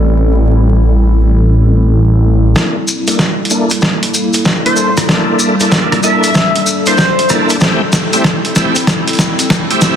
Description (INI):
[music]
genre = glitch hop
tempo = 95 BPM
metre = 4/4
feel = swing 64% on 16ths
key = G dorian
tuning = A4 = 440 Hz
[part]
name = warbly tape-like pad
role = sustained chords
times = 0.0-10.0 s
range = G3 to A4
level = -17 LUFS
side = left 1 dB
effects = chorus, built-in reverb, sidechain pumping
[part]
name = phased detuned saw bass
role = bass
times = 0.0-2.5 s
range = A1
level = -9 LUFS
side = equal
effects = phaser
[part]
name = bright tonewheel organ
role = stabs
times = 2.6-10.0 s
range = A3 to C5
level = -17 LUFS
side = equal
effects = chorus vibrato, slow rotary speaker, sidechain pumping, low-pass filter, dub echo
[part]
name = boom bap sampler-style drum kit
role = drums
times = 2.6-10.0 s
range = hi-hat, rim click, snare drum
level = -13 LUFS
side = equal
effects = none
[part]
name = electronic kick drum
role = drums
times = 2.6-9.7 s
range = none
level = -28 LUFS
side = equal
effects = none
[part]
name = shekere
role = percussion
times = 2.6-10.0 s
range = none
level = -20 LUFS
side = left 2 dB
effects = none
[part]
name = sync lead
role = melody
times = 4.7-7.3 s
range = C5 to E5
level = -17 LUFS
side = equal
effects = wide subtle chorus, dub echo
[sound]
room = light reverb, digital ambience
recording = dense, heavily limited modern master, vinyl crackle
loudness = -9 LUFS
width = side -9 dB against mid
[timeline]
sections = 0.0-2.6 A section; 2.6-10.0 B section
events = build-up 2.6-10.0; drum fill 2.6-10.0; filter sweep on tonewheel organ 2.6-10.0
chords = 0.0 Am7; 2.6 Gm69; 7.6 Am7